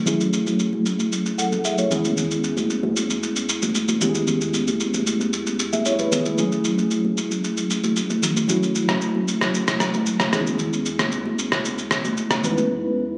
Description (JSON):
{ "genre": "amapiano", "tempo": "114 BPM", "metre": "4/4", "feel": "straight", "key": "F# minor", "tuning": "A4 = 440 Hz", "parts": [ { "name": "mellow tine electric piano", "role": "accompaniment", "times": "0.0-13.2 s", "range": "E2 to F#5", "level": "-25 LUFS", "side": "equal", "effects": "low-pass filter" }, { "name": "electronic shaker and rim click", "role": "drums", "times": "0.1-12.7 s", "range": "none", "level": "-28 LUFS", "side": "equal", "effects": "overdrive" }, { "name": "congas", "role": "percussion", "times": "0.1-12.7 s", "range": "none", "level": "-29 LUFS", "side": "equal", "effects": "none" } ], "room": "light reverb", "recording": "recorded on a phone in the room, club reverb, compression", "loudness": "-22 LUFS", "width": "mono", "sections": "0.0-13.2 A section", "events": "filter sweep on tine electric piano 0.0-13.2; break 12.7-13.2", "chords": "0.0 F#m9; 1.9 C#m7/E; 6.4 F#m9; 10.3 C#m7/E", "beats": "| 0.07 0.59 1.12 1.64 | 2.17 2.70 3.22 3.75 | 4.28 4.80 5.33 5.85 | 6.38 6.91 7.43 7.96 | 8.49 9.01 9.54 10.06 | 10.59 11.12 11.64 12.17 | 12.70" }